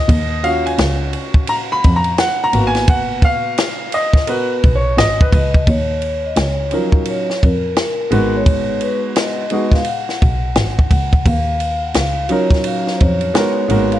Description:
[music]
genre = hip hop, jazz-hop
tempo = 86 BPM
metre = 4/4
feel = swing 63% on 16ths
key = Eb minor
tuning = A4 = 441 Hz
[part]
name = warm baby grand piano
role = accompaniment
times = 0.0-14.0 s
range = F3 to Cb6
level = -18 LUFS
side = equal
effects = none
[part]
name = rich double bass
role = bass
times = 0.0-14.0 s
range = Ab1 to F2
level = -19 LUFS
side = equal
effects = none
[part]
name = compact cocktail drum kit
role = drums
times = 0.1-14.0 s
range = hi-hat, kick drum, ride cymbal, snare drum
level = -16 LUFS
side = equal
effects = vintage 12-bit sampler grit
[part]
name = vibraphone with medium mallets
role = melody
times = 5.3-14.0 s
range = Bb4 to Gb5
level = -21 LUFS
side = left 2 dB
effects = slapback echo
[sound]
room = light reverb, small room ambience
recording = none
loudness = -13 LUFS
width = side -13 dB against mid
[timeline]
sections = 0.0-5.7 A section; 5.7-14.0 B section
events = grand piano solo 0.0-5.7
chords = 0.1 Ebm9; 2.5 Abm9; 5.7 Ebm9; 8.1 Abm7; 11.3 Ebm9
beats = | 0.09 0.79 1.49 2.19 | 2.88 3.58 4.28 4.98 | 5.67 6.37 7.07 7.77 | 8.46 9.16 9.86 10.56 | 11.26 11.95 12.65 13.35

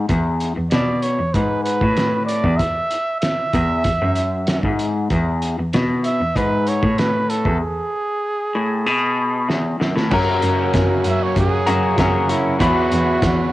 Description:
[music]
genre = indie rock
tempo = 96 BPM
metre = 4/4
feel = straight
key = E mixolydian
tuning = A4 = 441 Hz
[part]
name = electric guitar through a small old amp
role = riff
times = 0.0-13.5 s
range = E2 to B4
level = -20 LUFS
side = left 2 dB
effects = cassette tape
[part]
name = bright cello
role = bass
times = 0.0-13.5 s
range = E2 to B2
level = -23 LUFS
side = equal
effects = none
[part]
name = cloth-damped thuddy drum kit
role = drums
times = 0.1-13.4 s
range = crash cymbal, hi-hat, kick drum, snare drum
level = -23 LUFS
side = equal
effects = none
[part]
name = breathy trumpet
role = melody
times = 0.7-13.5 s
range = E4 to E5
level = -22 LUFS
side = right 2 dB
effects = none
[part]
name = cranked stack guitar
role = riff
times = 10.1-13.5 s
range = F#2 to F#4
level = -25 LUFS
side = right 6 dB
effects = overdrive, analog chorus, cassette tape
[sound]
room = light reverb, studio reverb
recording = home recording on cassette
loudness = -16 LUFS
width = side -16 dB against mid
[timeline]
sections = 0.0-10.1 A section; 10.1-13.5 B section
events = drum fill 9.5-10.1; trumpet solo 10.1-13.5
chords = 0.0 E; 10.1 F#; 12.6 Esus2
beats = | 0.09 0.72 1.34 1.97 | 2.60 3.23 3.85 4.48 | 5.11 5.73 6.36 6.99 | 7.62 8.24 8.87 9.49 | 10.12 10.74 11.36 11.98 | 12.61 13.22

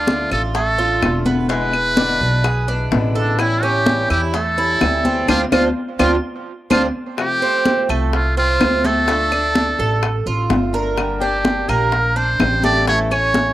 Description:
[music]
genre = latin, Cuban son and guajira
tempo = 127 BPM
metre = 4/4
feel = straight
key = D minor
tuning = A4 = 441 Hz
[part]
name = trumpet with metal mute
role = melody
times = 0.0-13.5 s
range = D4 to D5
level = -19 LUFS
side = right 1 dB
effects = cassette tape
[part]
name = picked acoustic archtop guitar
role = accompaniment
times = 0.0-13.5 s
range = B2 to G4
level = -26 LUFS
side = left 6 dB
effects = none
[part]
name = Cuban tres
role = arpeggios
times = 0.0-13.5 s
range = G#3 to Bb4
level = -22 LUFS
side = right 5 dB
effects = analog delay
[part]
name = upright bass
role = bass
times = 0.0-13.5 s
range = E1 to E2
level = -22 LUFS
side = equal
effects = none
[part]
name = bongos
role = percussion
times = 0.1-13.5 s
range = none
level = -26 LUFS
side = left 7 dB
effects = none
[part]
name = congas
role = percussion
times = 0.1-13.5 s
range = none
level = -22 LUFS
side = left 1 dB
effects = none
[part]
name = claves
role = percussion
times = 0.3-13.4 s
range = none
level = -27 LUFS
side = left 7 dB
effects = none
[sound]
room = light reverb, small room ambience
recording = home recording on cassette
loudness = -15 LUFS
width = side -14 dB against mid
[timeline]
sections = 0.0-7.2 A section; 7.2-13.5 B section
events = band accent 5.3-7.2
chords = 0.0 Dm; 1.5 E7; 3.4 A7; 5.3 Dm7; 7.2 F; 9.1 Dm; 11.0 Gm; 12.9 A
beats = 0.07 0.55 1.02 | 1.50 1.97 2.44 2.92 | 3.39 3.87 4.34 4.81 | 5.29 5.76 6.23 6.71 | 7.18 7.66 8.13 8.61 | 9.08 9.55 10.03 10.50 | 10.98 11.45 11.93 12.40 | 12.88 13.35

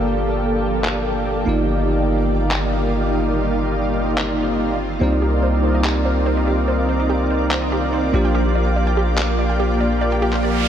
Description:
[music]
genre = future bass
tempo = 144 BPM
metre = 4/4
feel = half-time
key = unclear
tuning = A4 = 440 Hz
[part]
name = bell-like tine electric piano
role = accompaniment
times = 0.0-10.7 s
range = Bb3 to D5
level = -26 LUFS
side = right 1 dB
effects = phaser, tape echo
[part]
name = shimmering ambient pad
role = sustained chords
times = 0.0-10.7 s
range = Eb3 to D5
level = -28 LUFS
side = left 1 dB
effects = chorus, built-in reverb
[part]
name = dense compressed supersaw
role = riff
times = 0.0-10.7 s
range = Bb3 to F5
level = -21 LUFS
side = equal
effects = low-pass filter, tape echo
[part]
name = long sustained 808-style bass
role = bass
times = 0.0-10.7 s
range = G1 to C2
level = -21 LUFS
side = equal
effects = none
[part]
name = electronic handclaps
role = drums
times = 0.8-10.4 s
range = none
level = -29 LUFS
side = left 1 dB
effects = low-pass filter on hats, studio reverb, low-pass filter on snare, low-pass filter on cymbals
[part]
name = wide unison pluck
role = arpeggios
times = 5.0-10.7 s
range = G4 to G5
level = -27 LUFS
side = right 2 dB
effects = tape echo
[part]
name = noise sweep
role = sound effects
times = 10.2-10.7 s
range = none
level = -26 LUFS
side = right 5 dB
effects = none
[sound]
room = light reverb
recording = none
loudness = -17 LUFS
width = side -9 dB against mid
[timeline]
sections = 0.0-10.7 A section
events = noise sweep 10.2-10.7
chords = 0.0 Gm9; 1.5 Ebmaj9/G; 5.0 Cm11; 8.1 Bb6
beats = | 0.01 0.43 0.84 1.26 | 1.68 2.10 2.51 2.93 | 3.35 3.76 4.18 4.59 | 5.01 5.43 5.84 6.26 | 6.68 7.09 7.51 7.93 | 8.35 8.76 9.18 9.60 | 10.01 10.43

